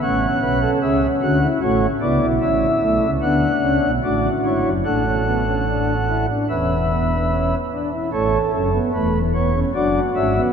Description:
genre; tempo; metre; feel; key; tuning
classical, baroque-style 4-part fugue for pipe organ; 74 BPM; 4/4; straight; A major; A4 = 437 Hz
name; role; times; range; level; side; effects
pipe organ, flutes; solo; 0.0-10.5 s; E1 to F#5; -17 LUFS; equal; none
room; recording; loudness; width
wet cathedral reverb, RT60 6.3 s; none; -17 LUFS; side -7 dB against mid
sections
0.0-8.1 A section; 8.1-10.5 B section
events
none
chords
0.0 A; 1.6 F#m/A; 3.2 Bm7; 4.8 Esus4/A; 6.5 E5; 8.1 A; 9.7 D/F#

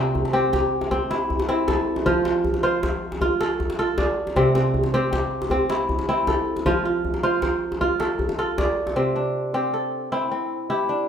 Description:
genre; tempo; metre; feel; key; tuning
west african traditional, West African string and xylophone music; 104 BPM (dotted quarters); 12/8; straight; C major; A4 = 440 Hz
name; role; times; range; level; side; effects
kora; arpeggios; 0.0-11.1 s; C3 to D5; -21 LUFS; equal; none
djembe; percussion; 0.2-9.0 s; none; -26 LUFS; left 1 dB; none
room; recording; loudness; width
wet stone room reverb, RT60 1.0 s; band playing live in one room; -20 LUFS; side -8 dB against mid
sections
0.0-9.0 A section; 9.0-11.1 B section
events
none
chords
0.0 C; 2.1 F; 4.4 C; 6.7 F; 9.0 C

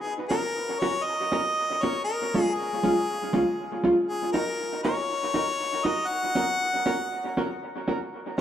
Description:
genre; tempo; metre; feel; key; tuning
ska; 119 BPM; 4/4; swing 56% on 8ths; F# major; A4 = 441 Hz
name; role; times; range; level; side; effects
clear harmonica; melody; 0.0-8.4 s; G#4 to F#5; -27 LUFS; left 2 dB; dub echo
vintage hollow-body jazz guitar; accompaniment; 0.3-8.4 s; G#3 to A#4; -27 LUFS; right 1 dB; dub echo
room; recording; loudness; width
wet large studio reverb, RT60 0.9 s; band playing live in one room; -24 LUFS; side -10 dB against mid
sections
0.0-8.1 A section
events
none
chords
0.0 F#; 2.0 C#; 4.1 D#m; 6.1 F#

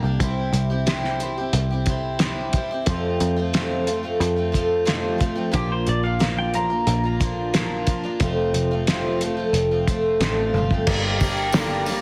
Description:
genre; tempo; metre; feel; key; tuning
folk rock and heartland rock; 90 BPM; 4/4; straight; unclear; A4 = 440 Hz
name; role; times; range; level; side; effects
picked twelve-string acoustic guitar; accompaniment; 0.0-12.0 s; F2 to G4; -26 LUFS; equal; none
picked electric bass; bass; 0.0-12.0 s; F1 to F2; -28 LUFS; equal; none
cloth-damped thuddy drum kit; drums; 0.2-12.0 s; crash cymbal, hi-hat, kick drum, snare drum, toms; -26 LUFS; equal; none
pedal steel guitar; second line; 5.6-7.2 s; G4 to Bb5; -30 LUFS; equal; tape echo
tonewheel organ; sustained chords; 10.9-12.0 s; G4 to Bb5; -33 LUFS; equal; slow rotary speaker
tambourine; percussion; 10.9-12.0 s; none; -41 LUFS; equal; none
room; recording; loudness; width
light reverb; heavily compressed radio sound, multiband compression; -22 LUFS; mono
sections
0.0-10.9 A section; 10.9-12.0 B section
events
drum fill 10.5-10.9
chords
0.2 C; 2.9 F; 5.5 Bb; 8.2 F; 10.9 Gm

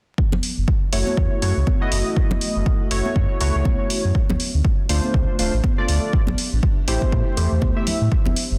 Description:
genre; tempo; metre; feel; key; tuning
deep house; 121 BPM; 4/4; swing 58% on 16ths; unclear; A4 = 440 Hz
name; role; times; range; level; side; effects
electronic kick drum; drums; 0.2-8.2 s; none; -23 LUFS; equal; none
granular cloud pad; texture; 2.6-8.6 s; C#4 to E5; -46 LUFS; equal; none
sub bass with octave; bass; 0.3-8.6 s; D1 to A2; -23 LUFS; equal; tube saturation, sidechain pumping
congas; percussion; 0.3-8.3 s; none; -32 LUFS; equal; none
electronic hi-hat; drums; 0.4-8.5 s; none; -30 LUFS; equal; none
chorused polysynth; stabs; 0.9-8.1 s; A3 to E5; -27 LUFS; equal; sidechain pumping, tape echo
room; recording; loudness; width
light reverb; dense, heavily limited modern master, vinyl crackle; -20 LUFS; mono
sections
0.2-8.6 A section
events
none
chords
0.2 F#m7; 4.2 Dm7; 6.1 Am7

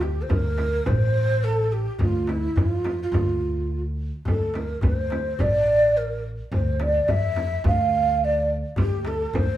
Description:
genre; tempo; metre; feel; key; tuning
Turkish makam ensemble; 106 BPM; 4/4; straight; D makam ussak; A4 = 442 Hz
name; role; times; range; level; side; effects
breathy mellow ney; melody; 0.0-9.6 s; E4-32c to F5; -23 LUFS; right 1 dB; none
upright bass; bass; 0.0-9.6 s; A1 to F2; -26 LUFS; equal; none
darbuka; percussion; 0.0-9.5 s; none; -28 LUFS; left 1 dB; none
frame drum; percussion; 0.0-9.5 s; none; -27 LUFS; right 1 dB; none
room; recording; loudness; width
moderate stone room reverb, RT60 1.2 s; band playing live in one room, small room ambience; -20 LUFS; side -13 dB against mid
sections
0.0-9.6 A section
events
none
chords
none

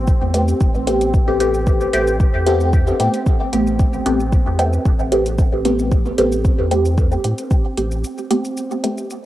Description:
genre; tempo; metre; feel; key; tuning
dub techno; 113 BPM; 4/4; straight; A minor; A4 = 440 Hz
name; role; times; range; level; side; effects
warm sub bass; bass; 0.0-8.0 s; E1 to A2; -21 LUFS; equal; sidechain pumping
bubbling stepped-filter texture; texture; 0.0-9.3 s; C4; -28 LUFS; right 2 dB; chorus, built-in reverb, sidechain pumping, cassette tape
electronic kick drum; drums; 0.1-7.6 s; none; -16 LUFS; equal; cassette tape
electronic shaker and hi-hat; drums; 0.1-9.2 s; none; -32 LUFS; equal; cassette tape
filtered dub chord stab; stabs; 0.3-9.1 s; A3 to G4; -19 LUFS; equal; phaser, sidechain pumping, cassette tape, dub echo
room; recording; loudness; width
light reverb, digital ambience; home recording on cassette; -15 LUFS; side -14 dB against mid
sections
0.0-9.3 A section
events
filter sweep on synth stab 0.0-9.3; break 8.0-9.3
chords
0.0 Am9

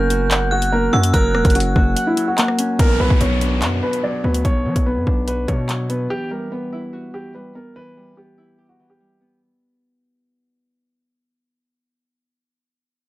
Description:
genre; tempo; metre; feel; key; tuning
hip hop, drill; 145 BPM; 4/4; half-time; B harmonic minor; A4 = 440 Hz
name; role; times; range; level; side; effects
dark baby grand piano; melody; 0.0-9.4 s; E4 to D5; -23 LUFS; right 1 dB; low-pass filter
metallic FM bell; second line; 0.0-2.3 s; E6 to G6; -25 LUFS; right 1 dB; chorus, digital delay
Celtic harp; accompaniment; 0.0-12.3 s; B2 to F#5; -23 LUFS; left 1 dB; low-pass filter
distorted 808-style bass; bass; 0.0-6.1 s; E1 to F#3; -20 LUFS; equal; distortion
drill drum kit; drums; 0.1-6.0 s; handclaps, hi-hat, kick drum, rim click; -18 LUFS; equal; none
downlifter; sound effects; 2.8-6.1 s; none; -29 LUFS; equal; none
room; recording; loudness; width
little or no reverb; none; -16 LUFS; side -17 dB against mid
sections
0.0-2.8 A section; 2.8-9.4 B section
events
break 2.0-2.8; fade-out 2.8-9.4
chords
0.0 F#; 2.8 Bm; 6.1 Emadd9

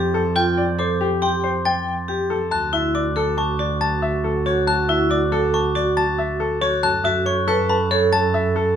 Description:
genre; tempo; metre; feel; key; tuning
classical, minimalist pattern music; 139 BPM; 5/4; straight; D major; A4 = 440 Hz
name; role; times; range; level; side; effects
bright grand piano; melody; 0.0-8.8 s; G4 to A5; -22 LUFS; left 4 dB; none
vibraphone with hard mallets; arpeggios; 0.0-8.2 s; E4 to B4; -24 LUFS; right 3 dB; none
warm double bass; bass; 0.0-8.8 s; D2 to F#2; -25 LUFS; right 3 dB; none
glockenspiel with hard plastic mallets; arpeggios; 0.4-8.4 s; B5 to A6; -26 LUFS; left 2 dB; none
mellow wooden-headed alto flute; second line; 2.5-8.8 s; F#4 to A4; -25 LUFS; right 4 dB; none
room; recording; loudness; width
light reverb; close, detailed microphones; -18 LUFS; side -8 dB against mid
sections
0.0-2.5 A section; 2.5-8.8 B section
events
none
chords
0.0 Fadd9; 2.5 Dadd9; 6.8 F#m7

